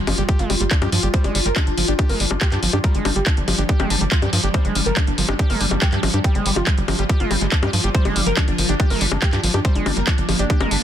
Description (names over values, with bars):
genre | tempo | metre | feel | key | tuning
psychedelic trance | 141 BPM | 4/4 | straight | G phrygian | A4 = 441 Hz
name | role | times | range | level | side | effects
pulsing gated texture | sustained chords | 0.0-10.8 s | F3 to F4 | -27 LUFS | left 1 dB | chorus, built-in reverb, sidechain pumping
tight sequencer bass | bass | 0.0-10.8 s | G1 to G2 | -22 LUFS | equal | none
impact | sound effects | 0.0-1.1 s | none | -35 LUFS | equal | none
overdriven acid bass | riff | 0.1-10.8 s | F3 to G4 | -27 LUFS | right 2 dB | auto-pan, cassette tape, sidechain pumping, dub echo
drum and bass drum kit | drums | 0.1-10.8 s | bongos, handclaps, hi-hat | -23 LUFS | left 3 dB | none
wide unison lead | melody | 0.2-10.8 s | G3 to C5 | -27 LUFS | equal | phaser, sidechain pumping, dub echo
electronic kick drum | drums | 0.3-10.6 s | none | -18 LUFS | equal | overdrive
room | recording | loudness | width
digital ambience | dense, heavily limited modern master | -16 LUFS | side -10 dB against mid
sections
0.0-10.8 A section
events
impact 0.0-1.1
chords
0.0 G5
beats
0.29 0.71 | 1.14 1.56 1.99 2.41 | 2.84 3.27 3.69 4.12 | 4.54 4.97 5.39 5.82 | 6.24 6.67 7.09 7.52 | 7.95 8.37 8.80 9.22 | 9.65 10.07 10.50